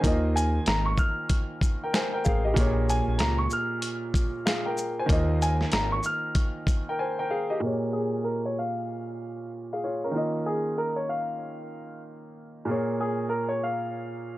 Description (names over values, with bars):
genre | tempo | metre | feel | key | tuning
hip hop, boom-bap hip-hop | 95 BPM | 4/4 | swing 62% on 16ths | Bb dorian | A4 = 440 Hz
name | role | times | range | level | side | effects
warm concert grand piano | accompaniment | 0.0-14.4 s | Bb2 to Ab5 | -29 LUFS | right 1 dB | cassette tape, high-pass filter, low-pass filter
smooth synth bass | bass | 0.0-6.0 s | Ab1 to Eb2 | -26 LUFS | equal | none
dusty soul sampler-style drum kit | drums | 0.0-6.9 s | hi-hat, kick drum, shaker, snare drum | -26 LUFS | equal | none
bright upright piano | melody | 0.4-14.4 s | Ab4 to F6 | -30 LUFS | equal | high-pass filter, low-pass filter, tape echo
room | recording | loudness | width
little or no reverb | dry, gritty hardware recording | -24 LUFS | side -16 dB against mid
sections
0.0-7.6 A section; 7.6-14.4 B section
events
drums muted 7.0-7.6; filter sweep 7.6-14.4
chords
0.0 Ebsus2; 2.6 Bbm7; 5.1 Ebsus2; 7.6 Bbm7; 10.1 Ebsus2; 12.7 Bbm7